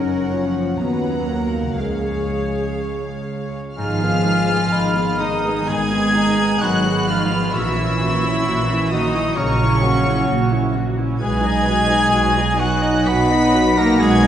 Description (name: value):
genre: cinematic, emotional film score for orchestra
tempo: 59-66 BPM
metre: 4/4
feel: rubato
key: G# dorian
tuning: A4 = 439 Hz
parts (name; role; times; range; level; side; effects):
- warm studio violin section; melody; 0.0-14.3 s; G#4 to B6; -25 LUFS; left 1 dB; none
- warm studio violin section; second line; 0.0-14.3 s; C#5 to B5; -28 LUFS; left 4 dB; none
- warm studio viola section; accompaniment; 0.0-14.3 s; E#3 to D#5; -25 LUFS; right 1 dB; none
- mellow French horn section; sustained chords; 0.0-14.3 s; D#3 to D#4; -25 LUFS; left 1 dB; none
- concert harp; arpeggios; 0.0-14.3 s; F#2 to D#6; -29 LUFS; left 2 dB; none
- dark studio double bass section; bass; 0.0-14.3 s; F#1 to D#2; -24 LUFS; right 3 dB; none
- warm studio cello section; bass; 0.0-14.3 s; C#2 to B3; -22 LUFS; equal; none
- hollow concert flute; second line; 3.8-14.3 s; F#5 to C#6; -25 LUFS; left 1 dB; none
- warm cor anglais; second line; 3.8-14.3 s; C#4 to B4; -25 LUFS; right 1 dB; none
room: wet scoring stage reverb, RT60 2.1 s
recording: heard from further back in the room, nothing above 10.5 kHz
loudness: -16 LUFS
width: side -10 dB against mid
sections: 0.0-3.8 A section; 3.8-14.3 B section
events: none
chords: 0.0 F#; 1.8 C#; 3.8 G#m; 7.5 F#7/A#; 11.2 B